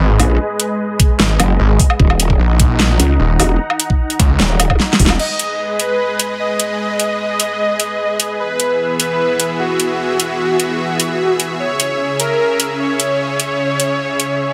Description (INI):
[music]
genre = heavy wobble dubstep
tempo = 150 BPM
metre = 4/4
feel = half-time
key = G# minor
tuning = A4 = 442 Hz
[part]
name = supersaw pad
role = sustained chords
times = 0.0-14.5 s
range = C#3 to A#5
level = -23 LUFS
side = equal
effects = sidechain pumping, low-pass filter
[part]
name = snarling distorted saw bass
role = bass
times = 0.0-4.4 s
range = D#1 to C#2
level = -16 LUFS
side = equal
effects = distortion, overdrive
[part]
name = growl bass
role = bass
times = 0.2-5.2 s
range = D#1 to C#2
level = -17 LUFS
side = equal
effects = chorus, overdrive
[part]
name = dubstep drum kit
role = drums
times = 0.2-14.3 s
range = crash cymbal, hi-hat, snare drum, woodblock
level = -18 LUFS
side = equal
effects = none
[part]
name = electronic kick drum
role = drums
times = 1.0-5.1 s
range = none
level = -15 LUFS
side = equal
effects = none
[part]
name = soft supersaw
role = melody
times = 5.2-14.5 s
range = F#4 to D#5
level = -20 LUFS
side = equal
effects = tape echo
[sound]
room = moderate digital room reverb, RT60 1.2 s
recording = none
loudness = -16 LUFS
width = mono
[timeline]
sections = 0.0-5.2 A section; 5.2-14.5 B section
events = drop 0.0-5.2; drum fill 4.8-5.2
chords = 0.0 G#m; 2.0 D#m; 5.2 G#m; 8.4 E; 11.6 C#m